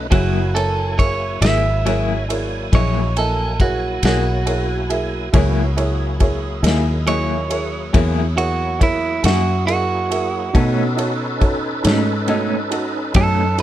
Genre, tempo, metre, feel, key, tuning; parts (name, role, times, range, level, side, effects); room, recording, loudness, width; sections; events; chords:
slow blues; 46 BPM (dotted quarters); 12/8; straight; F# mixolydian; A4 = 440 Hz
tonewheel organ; sustained chords; 0.0-13.6 s; F#3 to G#5; -27 LUFS; left 1 dB; slow rotary speaker, chorus vibrato
fingered electric bass; bass; 0.0-13.6 s; F#1 to B2; -20 LUFS; left 1 dB
clean electric guitar; second line; 0.1-13.6 s; E4 to E5; -22 LUFS; right 4 dB
clear upright piano; accompaniment; 0.1-13.6 s; A#3 to G#5; -25 LUFS; right 3 dB
electric guitar through a small old amp; accompaniment; 0.1-13.4 s; B2 to G#4; -23 LUFS; left 3 dB; tremolo
natural country drum kit; drums; 0.1-13.6 s; kick drum, ride cymbal, snare drum; -22 LUFS; equal
little or no reverb; dark, warm production; -16 LUFS; side -12 dB against mid
0.0-13.6 A section
clean electric guitar solo 0.0-13.6
0.1 F#9; 10.6 B9